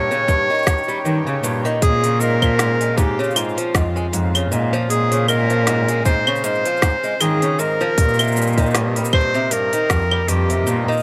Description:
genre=folktronica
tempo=78 BPM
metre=4/4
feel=swing 56% on 16ths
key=unclear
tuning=A4 = 440 Hz
part: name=bright clarinet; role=melody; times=0.0-10.9 s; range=F4 to Db5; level=-23 LUFS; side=equal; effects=tape echo
part: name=hand-pumped harmonium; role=sustained chords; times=0.0-11.0 s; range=C3 to G4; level=-32 LUFS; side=equal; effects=none
part: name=fingerpicked swing-style acoustic guitar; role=arpeggios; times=0.0-11.0 s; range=G2 to Ab3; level=-26 LUFS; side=equal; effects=tape echo
part: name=dark cello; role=bass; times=0.0-10.8 s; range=F2 to Eb3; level=-23 LUFS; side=equal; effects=tube saturation
part: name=organic electronic drum kit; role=drums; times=0.1-11.0 s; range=cabasa, claves, hi-hat, snare drum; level=-25 LUFS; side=equal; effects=none
part: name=electronic kick drum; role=drums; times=0.3-10.1 s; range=none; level=-20 LUFS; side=equal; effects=none
room=light reverb, studio ambience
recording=none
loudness=-18 LUFS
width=mono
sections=0.0-11.0 A section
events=none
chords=0.0 Eb7; 1.8 Dbmaj7; 8.0 Cm7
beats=0.28 1.05 | 1.82 2.59 3.36 4.13 | 4.90 5.67 6.44 7.21 | 7.98 8.75 9.52 10.28

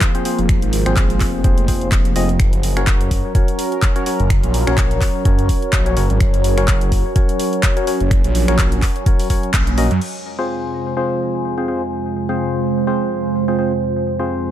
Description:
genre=bass house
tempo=126 BPM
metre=4/4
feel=swing 56% on 16ths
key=F phrygian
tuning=A4 = 441 Hz
part: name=sweeping resonant pad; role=sustained chords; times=0.0-14.5 s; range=F2 to Bb4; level=-24 LUFS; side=right 3 dB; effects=chorus, sidechain pumping
part: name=percussive organ stab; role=stabs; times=0.0-14.5 s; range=C4 to Eb5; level=-23 LUFS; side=left 2 dB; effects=chorus, sidechain pumping, ping-pong delay
part: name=big-room dance drum kit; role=drums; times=0.0-10.1 s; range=crash cymbal, finger snaps, handclaps, hi-hat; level=-25 LUFS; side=equal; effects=overdrive
part: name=electronic kick drum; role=drums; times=0.0-9.6 s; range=none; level=-16 LUFS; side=equal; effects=none
part: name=warbly tape-like pad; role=texture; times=0.0-14.5 s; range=F4 to Bb5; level=-26 LUFS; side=equal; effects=chorus, built-in reverb, sidechain pumping
part: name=phased detuned saw bass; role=bass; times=0.4-10.0 s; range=F1 to Gb2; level=-18 LUFS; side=equal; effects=phaser, overdrive, sidechain pumping
room=light reverb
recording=none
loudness=-15 LUFS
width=side -11 dB against mid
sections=0.0-10.0 A section; 10.0-14.5 B section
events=filter sweep on detuned saw bass 0.0-10.0; band accent 9.5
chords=0.0 Fm; 2.4 Gb; 10.0 Fm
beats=0.02 | 0.49 0.97 1.45 1.92 | 2.40 2.87 3.35 3.83 | 4.30 4.78 5.25 5.73 | 6.21 6.68 7.16 7.63 | 8.11 8.59 9.06 9.54 | 10.02 10.49 10.97 11.45 | 11.92 12.40 12.87 13.35 | 13.83 14.30

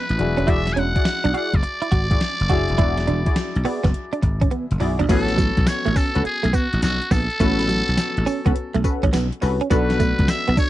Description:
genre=R&B, new jack swing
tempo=104 BPM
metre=4/4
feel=swing 66% on 16ths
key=A major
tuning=A4 = 441 Hz
part: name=trumpet with metal mute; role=melody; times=0.0-10.7 s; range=F#4 to G#5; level=-25 LUFS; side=equal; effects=slapback echo
part: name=clear concert grand piano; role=accompaniment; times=0.0-10.7 s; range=F#3 to A4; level=-29 LUFS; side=left 5 dB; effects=none
part: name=direct-recorded clean electric guitar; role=riff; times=0.0-10.7 s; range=F#3 to F#4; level=-24 LUFS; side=right 5 dB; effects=ensemble chorus
part: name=dry thumbed slap bass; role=bass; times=0.1-10.6 s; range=E1 to C#2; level=-22 LUFS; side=equal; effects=none
part: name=gated 80s digital drum machine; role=drums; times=0.1-10.7 s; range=crash cymbal, hi-hat, kick drum, snare drum, tambourine, toms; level=-22 LUFS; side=equal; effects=gated reverb, gated reverb snare, overdrive, vintage 12-bit sampler grit
part: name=funky polysynth comp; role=stabs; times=0.5-10.0 s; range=C#4 to D5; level=-26 LUFS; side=left 1 dB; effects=chorus, slapback echo
room=little or no reverb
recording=dry, close 1970s-style studio recording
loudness=-18 LUFS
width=side -14 dB against mid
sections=0.0-5.1 A section; 5.1-10.7 B section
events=drum fill 4.5-5.1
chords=0.2 E9; 5.1 A69; 9.7 Bm7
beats=| 0.48 1.06 1.63 2.21 | 2.79 3.36 3.94 4.52 | 5.09 5.67 6.25 6.83 | 7.40 7.98 8.56 9.13 | 9.71 10.29

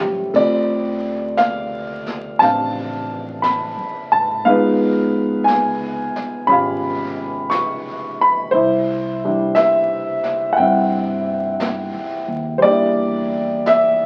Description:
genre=jazz ballad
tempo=59 BPM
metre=4/4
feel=swing 69% on 8ths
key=C major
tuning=A4 = 439 Hz
part: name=warm grand piano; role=accompaniment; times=0.0-14.1 s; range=G3 to Db6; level=-19 LUFS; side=equal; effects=none
part: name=upright bass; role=bass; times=0.0-14.1 s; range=Ab1 to Ab2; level=-32 LUFS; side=equal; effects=none
part: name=jazz brush drum kit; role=drums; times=0.3-14.1 s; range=brushed snare drum, hi-hat, kick drum, ride cymbal, snare drum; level=-34 LUFS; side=equal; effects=none
room=wet studio reverb, RT60 0.8 s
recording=very old 78 rpm record, vinyl crackle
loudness=-19 LUFS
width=mono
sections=0.0-14.1 A section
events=drum fill 0.0-0.3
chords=0.3 Dm7; 4.5 Db9; 8.5 Cadd9; 12.6 Em7b5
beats=| 0.34 1.37 2.40 3.43 | 4.45 5.47 6.49 7.52 | 8.54 9.56 10.58 11.60 | 12.63 13.66

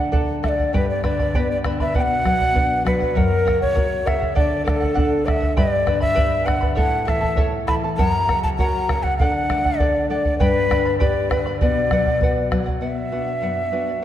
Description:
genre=andean folk, Andean ensemble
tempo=99 BPM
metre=2/4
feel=straight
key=B minor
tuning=A4 = 440 Hz
part: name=breathy mellow quena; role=melody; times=0.0-14.0 s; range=A4 to B5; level=-21 LUFS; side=left 1 dB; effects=none
part: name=charango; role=accompaniment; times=0.0-14.0 s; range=E4 to B5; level=-27 LUFS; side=right 2 dB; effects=none
part: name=nylon-string guitar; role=accompaniment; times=0.0-14.0 s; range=F#2 to B4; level=-24 LUFS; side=left 3 dB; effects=none
part: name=bombo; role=percussion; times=0.1-12.8 s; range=none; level=-22 LUFS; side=right 1 dB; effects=none
room=wet concert hall reverb, RT60 2.4 s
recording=dark, warm production, faint mains hum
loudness=-17 LUFS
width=side -11 dB against mid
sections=0.0-3.2 A section; 3.2-12.8 A section; 12.8-14.0 B section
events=none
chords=0.0 D; 0.7 G; 1.9 Bm; 3.2 F#; 4.4 D; 5.6 G; 6.8 A; 8.0 F#; 9.2 D; 10.4 G; 11.6 Bm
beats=0.14 | 0.74 1.34 | 1.95 2.56 | 3.16 3.76 | 4.37 4.97 | 5.58 6.18 | 6.78 7.39 | 7.99 8.59 | 9.20 9.80 | 10.40 11.01 | 11.61 12.22 | 12.82 13.43 | 14.04

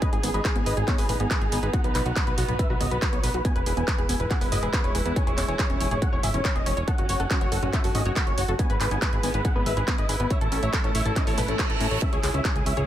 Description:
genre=uplifting trance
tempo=140 BPM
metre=4/4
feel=straight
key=C# minor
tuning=A4 = 439 Hz
part: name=big supersaw lead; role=melody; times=0.0-12.8 s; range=F#4 to G#5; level=-30 LUFS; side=equal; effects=sidechain pumping, low-pass filter, dub echo
part: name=rich chamber string section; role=sustained chords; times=0.0-12.9 s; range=G#3 to G#4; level=-34 LUFS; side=right 2 dB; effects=sidechain pumping
part: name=tight sequenced synth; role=arpeggios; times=0.0-12.8 s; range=B3 to C#5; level=-32 LUFS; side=left 1 dB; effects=chorus, sidechain pumping, dub echo
part: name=electronic kick drum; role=drums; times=0.0-12.5 s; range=none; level=-26 LUFS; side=equal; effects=distortion, overdrive
part: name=techno drum kit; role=drums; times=0.0-12.9 s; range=handclaps, hi-hat, toms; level=-31 LUFS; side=equal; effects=overdrive
part: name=plucky analog bass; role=bass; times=0.1-12.8 s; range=E1 to A2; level=-28 LUFS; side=equal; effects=sidechain pumping
part: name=reverse cymbal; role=sound effects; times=11.3-12.0 s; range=none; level=-33 LUFS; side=right 5 dB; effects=none
room=little or no reverb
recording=none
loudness=-22 LUFS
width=side -12 dB against mid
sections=0.0-12.9 A section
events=reverse cymbal 11.3-12.0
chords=0.0 G#m; 1.7 B; 3.4 E; 5.2 C#m/E; 6.9 F#m; 8.6 E/G#; 10.3 A; 12.0 C#m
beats=| 0.02 0.45 0.88 1.31 | 1.74 2.16 2.59 3.02 | 3.45 3.88 4.31 4.74 | 5.16 5.59 6.02 6.45 | 6.88 7.31 7.74 8.16 | 8.59 9.02 9.45 9.88 | 10.31 10.73 11.16 11.59 | 12.02 12.45

